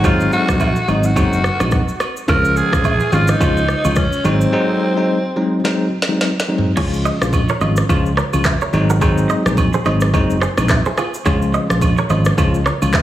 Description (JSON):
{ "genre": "afrobeats", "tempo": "107 BPM", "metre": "4/4", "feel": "swing 58% on 16ths", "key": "Db major", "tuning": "A4 = 441 Hz", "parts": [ { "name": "breathy alto saxophone", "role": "melody", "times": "0.0-5.9 s", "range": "C4 to Bb4", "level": "-19 LUFS", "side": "right 1 dB", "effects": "tape echo" }, { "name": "bell-like tine electric piano", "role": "accompaniment", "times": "0.0-13.0 s", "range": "F3 to F4", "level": "-19 LUFS", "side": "left 2 dB", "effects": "fast stereo tremolo" }, { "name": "fingered electric bass", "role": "bass", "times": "0.0-13.0 s", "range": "Gb1 to Db2", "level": "-18 LUFS", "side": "right 1 dB", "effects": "none" }, { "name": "afro-pop drum kit", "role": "drums", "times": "0.0-13.0 s", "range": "crash cymbal, handclaps, kick drum, rim click, shaker, snare drum, toms", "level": "-20 LUFS", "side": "equal", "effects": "none" }, { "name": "agogo bells and woodblock", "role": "percussion", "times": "0.0-13.0 s", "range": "none", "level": "-26 LUFS", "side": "right 5 dB", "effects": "none" }, { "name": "semi-hollow electric guitar", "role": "riff", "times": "6.8-12.8 s", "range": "F4 to Eb5", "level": "-23 LUFS", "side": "right 5 dB", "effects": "tape echo" } ], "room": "light reverb", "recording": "heavily compressed radio sound, studio reverb", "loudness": "-14 LUFS", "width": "side -13 dB against mid", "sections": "0.0-6.8 A section; 6.8-13.0 B section", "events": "break 4.5-6.8; drum fill 5.6-6.8", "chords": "0.0 Ab7; 2.3 Db; 4.2 Ab7; 6.8 Db; 8.7 Ab7; 11.3 Db" }